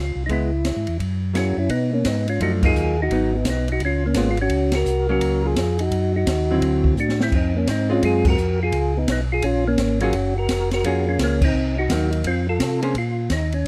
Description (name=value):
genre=soul jazz organ trio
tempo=171 BPM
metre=4/4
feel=swing 64% on 8ths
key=unclear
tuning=A4 = 444 Hz
part: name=percussive tonewheel organ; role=melody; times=0.0-13.7 s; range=A#3 to Bb4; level=-25 LUFS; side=equal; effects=slow rotary speaker, overdrive, chorus vibrato
part: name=mellow tonewheel organ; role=bass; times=0.0-13.7 s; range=F1 to C3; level=-25 LUFS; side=equal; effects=slow rotary speaker
part: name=archtop guitar, miked and amplified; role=accompaniment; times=0.3-12.9 s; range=D3 to C5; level=-26 LUFS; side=equal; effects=none
part: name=open jazz drum kit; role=drums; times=0.3-13.7 s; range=crash cymbal, hi-hat, kick drum, ride cymbal, snare drum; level=-28 LUFS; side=equal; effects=none
room=light reverb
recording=none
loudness=-21 LUFS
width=mono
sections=0.0-1.7 A section; 1.7-13.0 B section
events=band accent 2.6, 4.7, 8.2, 11.4; drum fill 7.0-7.3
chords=0.3 Dbm7; 1.0 Gb9; 1.7 Bmaj7; 3.1 Abm7; 3.8 Db7; 4.5 Gbmaj7; 5.9 Ebm; 6.6 D9; 7.3 Dbmaj7; 8.7 Db7; 10.1 Gbmaj9; 11.5 Cm7b5; 12.3 F; 13.0 Bbm